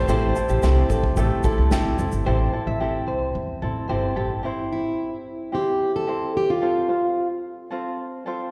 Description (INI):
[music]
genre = acoustic pop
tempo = 110 BPM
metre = 4/4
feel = straight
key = unclear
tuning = A4 = 439 Hz
[part]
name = fingerpicked plugged-in steel-string acoustic guitar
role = melody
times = 0.0-7.3 s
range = E4 to C5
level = -26 LUFS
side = equal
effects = slapback echo
[part]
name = clear upright piano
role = accompaniment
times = 0.0-2.3 s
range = A3 to C5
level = -33 LUFS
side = equal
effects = none
[part]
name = tenor ukulele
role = accompaniment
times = 0.0-8.5 s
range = C4 to C5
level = -30 LUFS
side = equal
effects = slapback echo
[part]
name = upright bass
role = bass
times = 0.0-4.4 s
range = F1 to E2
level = -25 LUFS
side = equal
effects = none
[part]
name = electric guitar at the edge of break-up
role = arpeggios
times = 0.1-4.3 s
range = G4 to E5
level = -32 LUFS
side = equal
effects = spring reverb
[part]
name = unplugged drum kit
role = drums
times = 0.1-2.2 s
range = kick drum, shaker, snare drum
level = -28 LUFS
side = equal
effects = none
[sound]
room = moderate plate reverb, RT60 1.4 s, small room ambience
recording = live gig heard through the venue's PA, recital hall reverb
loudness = -23 LUFS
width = mono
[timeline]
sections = 0.0-2.3 A section; 2.3-4.4 B section; 4.4-8.5 C section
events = none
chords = 0.0 Am7; 4.4 C; 6.6 F